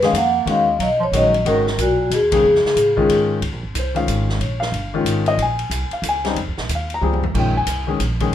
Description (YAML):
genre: modal jazz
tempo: 183 BPM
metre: 3/4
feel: swing 63% on 8ths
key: G# dorian, Bb dorian from 3.4 s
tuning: A4 = 439 Hz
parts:
  - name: warm bass clarinet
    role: second line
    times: 0.0-3.3 s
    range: A#2 to A#3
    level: -26 LUFS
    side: right 5 dB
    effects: none
  - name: warm baby grand piano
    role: accompaniment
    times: 0.0-8.3 s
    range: Db3 to Bb5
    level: -21 LUFS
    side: left 4 dB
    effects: none
  - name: upright bass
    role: bass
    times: 0.0-8.3 s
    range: F1 to A2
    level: -23 LUFS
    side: right 1 dB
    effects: none
  - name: swinging big-band drum kit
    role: drums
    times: 0.0-8.3 s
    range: crash cymbal, hi-hat, kick drum, ride cymbal, snare drum, toms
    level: -27 LUFS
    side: equal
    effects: none
  - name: vibraphone with medium mallets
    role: melody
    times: 0.1-3.3 s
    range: F#4 to F#5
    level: -16 LUFS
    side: left 1 dB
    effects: none
room: light reverb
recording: minimal, uncompressed stereo recording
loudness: -16 LUFS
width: side -10 dB against mid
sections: 0.0-3.4 A section; 3.4-8.3 B section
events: band accent 2.3; drum fill 7.0-7.3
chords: 0.0 G#m9; 2.4 F7alt; 3.4 Bbm9